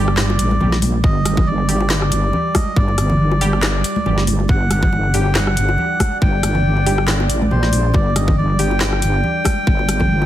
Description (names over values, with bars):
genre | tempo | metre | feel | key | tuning
deep dubstep | 139 BPM | 4/4 | swing 55% on 16ths, half-time | G harmonic minor | A4 = 439 Hz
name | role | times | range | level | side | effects
melodica | melody | 0.0-10.3 s | C5 to G5 | -22 LUFS | equal | vintage 12-bit sampler grit, dub echo
deep dark ambient pad | sustained chords | 0.0-10.3 s | G3 to D5 | -26 LUFS | right 2 dB | chorus, built-in reverb
filtered dub chord stab | stabs | 0.0-8.8 s | D3 to G4 | -27 LUFS | right 1 dB | chorus, dub echo
wobble bass | bass | 0.0-10.3 s | G1 to Bb1 | -17 LUFS | equal | chorus
garage drum kit | drums | 0.1-10.0 s | handclaps, hi-hat, rim click, snare drum | -22 LUFS | left 1 dB | studio reverb
bongos and congas | percussion | 0.3-10.3 s | none | -24 LUFS | left 1 dB | none
electronic kick drum | drums | 1.0-10.1 s | none | -16 LUFS | equal | overdrive, studio reverb
room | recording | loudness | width
light reverb | dense, heavily limited modern master, vinyl crackle | -14 LUFS | side -12 dB against mid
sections
0.0-10.3 A section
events
none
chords
0.0 G5